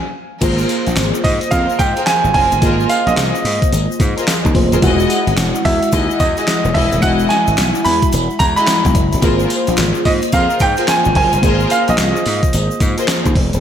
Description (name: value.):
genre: R&B, new jack swing.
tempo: 109 BPM.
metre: 4/4.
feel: swing 63% on 16ths.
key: Ab major.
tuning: A4 = 440 Hz.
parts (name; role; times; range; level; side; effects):
bright baby grand piano; melody; 0.0-13.3 s; Eb5 to B5; -17 LUFS; right 2 dB; slapback echo.
FM electric piano with soft pad layer; accompaniment; 0.4-13.6 s; G#3 to F#5; -20 LUFS; left 1 dB; chorus, slapback echo.
warm studio string section; stabs; 0.4-13.1 s; E4 to D#5; -23 LUFS; left 2 dB; slapback echo.
gritty slap bass; bass; 0.4-13.6 s; Eb1 to Ab2; -18 LUFS; equal; overdrive.
clean 12-bit digital drum machine; drums; 0.4-13.6 s; crash cymbal, handclaps, hi-hat, kick drum, snare drum, tambourine; -18 LUFS; equal; overdrive.
egg shaker; percussion; 0.4-13.6 s; none; -33 LUFS; left 9 dB; none.
room: wet lush hall reverb, RT60 1.9 s, digital ambience.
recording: big arena sound.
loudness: -12 LUFS.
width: side -9 dB against mid.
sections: 0.4-13.6 A section.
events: stop 0.0-0.4.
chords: 0.4 Ab69; 4.8 Emaj9; 9.2 Ab69.